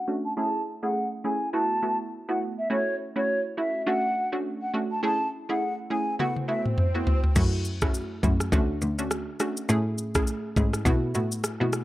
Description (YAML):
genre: afrobeats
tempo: 103 BPM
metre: 4/4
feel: swing 58% on 16ths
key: F# minor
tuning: A4 = 440 Hz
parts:
  - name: mellow hollow silver concert flute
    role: melody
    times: 0.0-6.6 s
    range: C#5 to A5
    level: -28 LUFS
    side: equal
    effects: low-pass filter, slapback echo
  - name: analog pluck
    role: accompaniment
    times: 0.1-11.8 s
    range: A3 to G#4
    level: -29 LUFS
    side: right 1 dB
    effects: chorus, low-pass filter
  - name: swell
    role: sound effects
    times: 6.2-7.4 s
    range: none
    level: -36 LUFS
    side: right 1 dB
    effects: none
  - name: afro-pop drum kit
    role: drums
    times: 6.2-11.8 s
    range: crash cymbal, kick drum, rim click, shaker, toms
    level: -26 LUFS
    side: equal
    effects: none
  - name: clear cello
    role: bass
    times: 7.4-11.8 s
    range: D2 to B2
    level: -27 LUFS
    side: equal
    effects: none
room: light reverb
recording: none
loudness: -24 LUFS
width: side -16 dB against mid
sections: 0.0-7.4 A section; 7.4-11.8 B section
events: filter sweep 0.0-7.4; swell 6.2-7.4; drum fill 6.2-7.4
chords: 0.4 Amaj7; 1.5 B7sus4; 2.7 F#m7; 3.9 Dmaj7; 5.0 Amaj7; 6.2 B7sus4; 7.4 F#m7; 8.5 Dmaj7; 9.7 Amaj7; 10.9 B7sus4